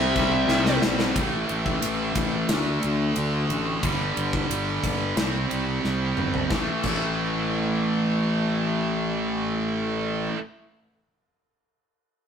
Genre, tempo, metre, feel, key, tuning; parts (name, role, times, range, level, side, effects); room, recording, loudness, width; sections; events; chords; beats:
hard rock; 90 BPM; 4/4; straight; A minor; A4 = 440 Hz
nasal lead guitar with a parked wah; melody; 0.0-0.8 s; E5; -26 LUFS; left 2 dB; overdrive
cranked stack guitar; riff; 0.0-10.4 s; G2 to D4; -29 LUFS; left 4 dB; overdrive, spring reverb
scooped high-gain guitar; riff; 0.0-10.4 s; G2 to D4; -27 LUFS; right 5 dB; distortion
sludgy distorted guitar; riff; 0.0-1.2 s; C3 to C4; -25 LUFS; left 1 dB; overdrive
fuzz fingered electric bass; bass; 0.0-10.3 s; G1 to D2; -29 LUFS; equal; overdrive
gated 80s drum kit; drums; 0.2-7.0 s; crash cymbal, kick drum, ride cymbal, snare drum, toms; -28 LUFS; left 1 dB
moderate stone room reverb, RT60 1.0 s; rough rehearsal-room recording, tube saturation; -22 LUFS; side -7 dB against mid
0.0-1.2 A section; 1.2-6.5 B section; 6.5-9.2 C section
drum fill 0.5-1.2, 5.8-6.5
0.0 C; 1.2 A5; 2.5 D5; 3.8 G5; 5.2 C5; 6.5 A5
0.49 | 1.16 1.83 2.49 3.16 | 3.83 4.50 5.17 5.84 | 6.51 7.18 7.85 8.52